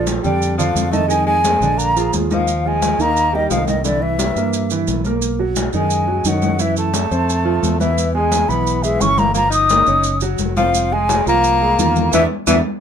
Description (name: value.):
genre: Afro-Cuban jazz.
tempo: 174 BPM.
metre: 4/4.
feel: straight.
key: unclear.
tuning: A4 = 440 Hz.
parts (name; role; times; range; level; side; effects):
mellow hollow silver concert flute; melody; 0.0-12.6 s; D5 to Eb6; -18 LUFS; equal; none.
warm tenor saxophone; second line; 0.0-12.6 s; D3 to Eb4; -23 LUFS; left 6 dB; none.
warm grand piano; accompaniment; 0.0-12.6 s; D3 to Eb5; -22 LUFS; right 4 dB; none.
fingered electric bass; bass; 0.0-12.6 s; F1 to G2; -21 LUFS; equal; none.
congas; percussion; 0.1-12.6 s; none; -24 LUFS; left 4 dB; none.
maracas; percussion; 0.1-12.6 s; none; -26 LUFS; right 8 dB; none.
room: moderate club reverb, RT60 0.6 s.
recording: minimal, uncompressed stereo recording.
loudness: -14 LUFS.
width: side -8 dB against mid.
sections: 0.0-2.5 A section; 2.5-12.8 B section.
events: band accent 12.1-12.8.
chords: 0.0 Bbmaj7; 1.1 Fm7; 1.8 Bb7; 2.5 Ebadd9; 3.8 C7; 5.2 Bmaj7; 6.6 Gbm7; 7.3 F; 8.0 E; 9.4 Gm7b5; 10.1 Gb5; 10.7 Fm7; 12.1 E5.